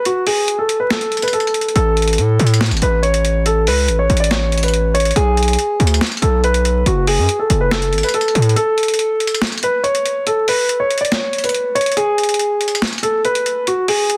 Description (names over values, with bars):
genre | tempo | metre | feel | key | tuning
hip hop, trap | 141 BPM | 4/4 | half-time | A major | A4 = 440 Hz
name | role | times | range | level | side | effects
dark concert grand piano | melody | 0.0-14.2 s | F#4 to D5 | -19 LUFS | equal | low-pass filter
boom bap sampler-style drum kit | drums | 0.1-14.2 s | hi-hat, snare drum | -23 LUFS | equal | none
distorted 808-style bass | bass | 1.8-8.6 s | F#1 to A2 | -18 LUFS | equal | distortion
room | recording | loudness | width
light reverb | dense, heavily limited modern master, vinyl crackle | -16 LUFS | mono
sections
0.0-14.2 A section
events
break 0.0-1.8; kick muted 8.6-14.2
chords
0.0 N.C.; 1.8 A; 5.2 Bm; 6.9 F#m; 8.6 N.C.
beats
| 0.05 0.48 0.91 1.33 | 1.76 2.18 2.61 3.03 | 3.46 3.88 4.31 4.74 | 5.16 5.59 6.01 6.44 | 6.86 7.29 7.71 8.14 | 8.56 8.99 9.42 9.84 | 10.27 10.69 11.12 11.54 | 11.97 12.39 12.82 13.24 | 13.67 14.10